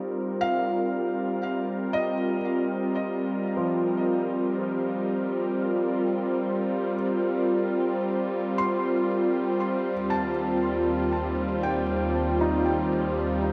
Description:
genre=ambient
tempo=free time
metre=none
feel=none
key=C dorian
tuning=A4 = 442 Hz
part: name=warm analog pad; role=sustained chords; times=0.0-13.5 s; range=Eb2 to Bb4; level=-27 LUFS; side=equal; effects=subtle chorus
part: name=felt-muted upright piano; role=arpeggios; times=0.0-13.5 s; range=F3 to C6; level=-34 LUFS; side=equal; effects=delay
room=wet plate reverb, RT60 2.9 s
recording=dreamy mix soaked in reverb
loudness=-26 LUFS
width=mono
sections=0.0-13.5 A section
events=none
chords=0.0 Cm7; 9.9 Ebadd9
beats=free time

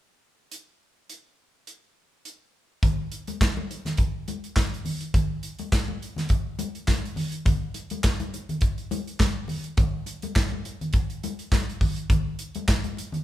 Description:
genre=disco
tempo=104 BPM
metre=4/4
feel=swing 56% on 16ths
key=none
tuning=none
part: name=modern studio drum kit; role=drums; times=0.5-13.2 s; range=handclaps, hi-hat, kick drum, snare drum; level=-24 LUFS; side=equal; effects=none
part: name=congas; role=percussion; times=2.8-13.2 s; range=none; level=-32 LUFS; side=left 1 dB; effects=none
room=moderate stone room reverb, RT60 1.1 s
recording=band playing live in one room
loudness=-24 LUFS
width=side -14 dB against mid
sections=0.5-2.8 A section; 2.8-13.2 B section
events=none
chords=none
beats=| 0.51 1.09 1.67 2.25 | 2.82 3.40 3.98 4.56 | 5.14 5.72 6.30 6.88 | 7.46 8.04 8.62 9.20 | 9.78 10.36 10.94 11.52 | 12.10 12.68

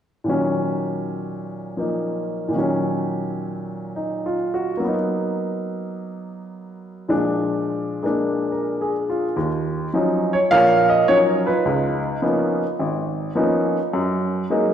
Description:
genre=solo jazz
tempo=105 BPM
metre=4/4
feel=swing 68% on 8ths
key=Eb minor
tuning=A4 = 440 Hz
part: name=warm upright piano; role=solo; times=0.2-14.7 s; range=Ab1 to F5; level=-19 LUFS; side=equal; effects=none
room=wet scoring stage reverb, RT60 1.9 s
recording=recorded in a church or concert hall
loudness=-19 LUFS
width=side -9 dB against mid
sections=0.3-9.4 A section; 9.4-14.7 B section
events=none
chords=0.3 Ebm7/Bb; 4.8 Bmaj7/F#; 7.1 Bb7; 9.4 Ebm9; 11.6 Db13; 13.9 Gb69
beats=| 0.26 0.83 1.40 1.97 | 2.54 3.10 3.67 4.24 | 4.81 5.38 5.95 6.52 | 7.09 7.66 8.23 8.80 | 9.37 9.94 10.51 11.08 | 11.65 12.22 12.79 13.36 | 13.93 14.49

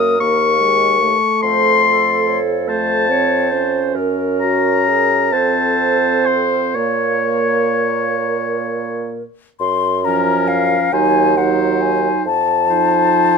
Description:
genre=classical, slow romantic movement for wind quintet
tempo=41-49 BPM (dotted quarters)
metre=6/8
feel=rubato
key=unclear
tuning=A4 = 440 Hz
part: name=mellow hollow silver concert flute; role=melody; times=0.0-13.4 s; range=Gb4 to C6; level=-20 LUFS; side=left 6 dB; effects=none
part: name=clear oboe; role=second line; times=0.0-13.4 s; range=Bb4 to Eb6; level=-18 LUFS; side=left 6 dB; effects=none
part: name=mellow French horn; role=accompaniment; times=0.0-13.4 s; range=F3 to Db4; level=-23 LUFS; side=right 2 dB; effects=none
part: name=warm clarinet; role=accompaniment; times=0.0-13.4 s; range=Db4 to Db5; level=-21 LUFS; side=right 9 dB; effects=none
part: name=warm bassoon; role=bass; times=0.0-13.4 s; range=Eb2 to Bb2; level=-21 LUFS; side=right 5 dB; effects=none
room=light reverb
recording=none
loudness=-13 LUFS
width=side -5 dB against mid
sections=0.0-9.6 A section; 9.6-13.4 B section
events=none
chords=0.0 Ebm; 1.4 F; 4.0 Gbadd9; 5.3 F; 6.8 Bbm; 9.6 Gbmaj7; 10.9 Cdim/Eb; 12.3 F7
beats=0.20 | 1.44 2.68 | 3.96 5.33 | 6.75 8.20 | 9.60 10.93 | 12.26

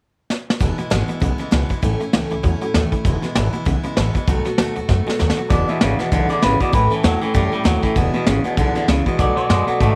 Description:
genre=rockabilly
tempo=196 BPM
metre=4/4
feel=swing 58% on 8ths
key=E major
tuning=A4 = 439 Hz
part: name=vintage brush drum kit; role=drums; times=0.3-9.9 s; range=hi-hat, kick drum, snare drum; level=-23 LUFS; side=equal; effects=none
part: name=picked steel-string acoustic guitar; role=accompaniment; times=0.6-10.0 s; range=E2 to F#4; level=-27 LUFS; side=equal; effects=none
part: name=twangy electric guitar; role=riff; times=0.6-10.0 s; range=E2 to A3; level=-25 LUFS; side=equal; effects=none
part: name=upright bass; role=bass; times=0.6-10.0 s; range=E1 to G#2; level=-23 LUFS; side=equal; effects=none
part: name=electric guitar through a small old amp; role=melody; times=5.5-10.0 s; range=A4 to E5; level=-24 LUFS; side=equal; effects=tape echo
room=light reverb, small room ambience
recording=none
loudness=-19 LUFS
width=mono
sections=0.6-5.5 A section; 5.5-10.0 B section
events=drum fill 0.3-0.6, 4.9-5.5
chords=0.0 N.C.; 0.6 E; 1.8 A; 3.1 E; 4.3 B7; 5.5 E; 6.7 A; 8.0 E; 9.2 B7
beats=0.30 | 0.61 0.91 1.22 1.52 | 1.83 2.14 2.44 2.75 | 3.05 3.36 3.67 3.97 | 4.28 4.59 4.89 5.20 | 5.51 5.81 6.12 6.43 | 6.73 7.04 7.35 7.66 | 7.96 8.27 8.58 8.89 | 9.19 9.50 9.81

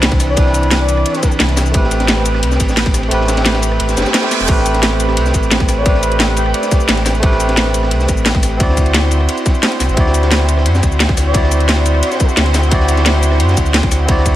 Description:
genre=liquid drum and bass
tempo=175 BPM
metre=4/4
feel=straight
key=unclear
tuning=A4 = 436 Hz
part: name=barky tine electric piano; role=accompaniment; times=0.0-14.4 s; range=E3 to D5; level=-19 LUFS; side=right 1 dB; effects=dub echo
part: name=lush unison pad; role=sustained chords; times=0.0-14.4 s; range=C4 to C5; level=-22 LUFS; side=right 1 dB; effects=chorus, sidechain pumping
part: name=sub bass with octave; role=bass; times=0.0-14.4 s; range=E1 to F#2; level=-15 LUFS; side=equal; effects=none
part: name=crunchy breakbeat drum kit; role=drums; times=0.0-14.3 s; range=ride cymbal, snare drum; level=-22 LUFS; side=equal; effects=high-pass filter on cymbals, high-pass filter on snare, high-pass filter on room
part: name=drum and bass drum kit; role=drums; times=0.0-14.3 s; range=cabasa, crash cymbal, hi-hat, rim click, snare drum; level=-17 LUFS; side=equal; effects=overdrive
part: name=electronic kick drum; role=drums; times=0.1-14.3 s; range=none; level=-15 LUFS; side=equal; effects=overdrive
part: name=breathy flute-like synth lead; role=melody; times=0.3-1.3, 5.8-6.8, 11.3-12.3 s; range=D5 to G5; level=-22 LUFS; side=left 2 dB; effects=lush chorus, digital delay
part: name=reverse cymbal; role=sound effects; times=3.9-4.5 s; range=none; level=-21 LUFS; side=right 7 dB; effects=none
room=light reverb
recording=none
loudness=-11 LUFS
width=side -13 dB against mid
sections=0.0-14.4 A section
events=kick drops out 3.1-4.5; reverse cymbal 3.9-4.5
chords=0.0 Cmaj9; 1.7 Am9; 8.6 D9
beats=0.03 | 0.37 0.71 1.06 1.40 | 1.74 2.09 2.43 2.77 | 3.11 3.46 3.80 4.14 | 4.49 4.83 5.17 5.51 | 5.86 6.20 6.54 6.89 | 7.23 7.57 7.91 8.26 | 8.60 8.94 9.29 9.63 | 9.97 10.31 10.66 11.00 | 11.34 11.69 12.03 12.37 | 12.71 13.06 13.40 13.74 | 14.09

